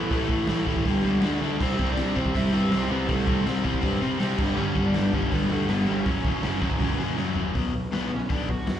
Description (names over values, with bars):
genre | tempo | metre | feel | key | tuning
punk rock | 161 BPM | 4/4 | straight | unclear | A4 = 440 Hz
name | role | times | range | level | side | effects
lead guitar through a small cranked amp | melody | 0.0-8.8 s | A3 to F#5 | -32 LUFS | right 2 dB | overdrive
overdriven electric guitar | riff | 0.0-8.8 s | F#2 to D4 | -28 LUFS | left 7 dB | slapback echo
overdriven semi-hollow guitar | riff | 0.0-7.5 s | F#2 to D4 | -28 LUFS | right 8 dB | slapback echo
fuzz picked electric bass | bass | 0.0-8.8 s | F#1 to C3 | -30 LUFS | equal | overdrive
raw garage drum kit | drums | 0.1-8.8 s | crash cymbal, hi-hat, kick drum, snare drum, toms | -28 LUFS | equal | none
room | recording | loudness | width
little or no reverb | live gig heard through the venue's PA, club reverb | -22 LUFS | side -10 dB against mid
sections
0.0-7.6 A section; 7.6-8.8 B section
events
drum fill 1.4, 7.2-7.6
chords
0.0 A5; 0.9 G5; 1.2 D5; 1.6 C5; 4.4 G; 6.1 F#5; 7.6 Bm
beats
| 0.11 0.48 0.85 1.23 | 1.60 1.97 2.35 2.72 | 3.09 3.46 3.84 4.21 | 4.58 4.95 5.33 5.70 | 6.07 6.44 6.81 7.19 | 7.56 7.93 8.30 8.68